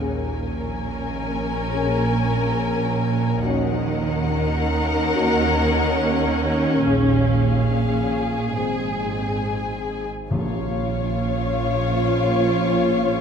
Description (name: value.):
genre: cinematic.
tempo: 70 BPM.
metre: 4/4.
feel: straight.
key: Bb minor.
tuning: A4 = 439 Hz.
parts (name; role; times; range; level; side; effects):
muted symphonic violin section; melody; 0.0-13.2 s; F5 to Ab5; -29 LUFS; left 6 dB; none.
muted symphonic violin section; second line; 0.0-13.2 s; Ab4 to Db5; -26 LUFS; left 4 dB; none.
muted symphonic viola section; accompaniment; 0.0-13.2 s; C4 to F4; -27 LUFS; right 1 dB; none.
mellow French horn section; sustained chords; 0.0-13.2 s; C4 to Ab4; -30 LUFS; left 4 dB; none.
muted symphonic cello section; bass; 0.0-13.2 s; Ab2 to Eb3; -27 LUFS; right 2 dB; none.
muted symphonic double bass section; bass; 0.0-13.2 s; Ab1 to Eb2; -26 LUFS; right 4 dB; none.
bowed-like drone; drone; 0.0-13.2 s; Ab1 to Eb2; -27 LUFS; right 1 dB; built-in reverb.
dark trombone section; sustained chords; 10.3-13.2 s; Bb2 to F3; -29 LUFS; right 6 dB; none.
timpani; percussion; 10.3-11.6 s; Bb2; -28 LUFS; left 2 dB; none.
room: wet concert hall reverb, RT60 2.2 s.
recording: none.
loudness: -19 LUFS.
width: side -7 dB against mid.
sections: 0.0-10.3 A section; 10.3-13.2 B section.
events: none.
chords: 0.0 Bbm7; 3.4 Ebm7; 6.9 Bbm7; 8.6 Ab; 10.3 Bbm.